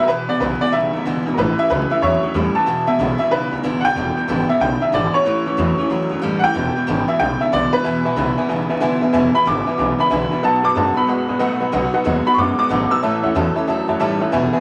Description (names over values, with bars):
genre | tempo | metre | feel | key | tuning
rockabilly | 185 BPM | 4/4 | swing 64% on 8ths | E major | A4 = 443 Hz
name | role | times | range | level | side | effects
bright upright piano | melody | 0.0-13.5 s | A#4 to E6 | -21 LUFS | equal | none
honky-tonk upright piano | accompaniment | 0.0, 7.8-14.6 s | B4 to A5 | -24 LUFS | equal | none
picked steel-string acoustic guitar | accompaniment | 0.0-14.6 s | E2 to A4 | -27 LUFS | equal | none
electric guitar through a small old amp | riff | 0.0-14.6 s | E2 to A3 | -24 LUFS | equal | none
upright bass | bass | 0.1-14.6 s | E1 to A2 | -27 LUFS | equal | none
room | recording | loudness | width
wet studio reverb, RT60 0.5 s | vinyl crackle | -18 LUFS | mono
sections
0.1-14.6 A section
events
none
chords
0.1 E; 1.4 A; 2.7 E; 5.3 A; 6.5 E; 10.4 B; 13.0 A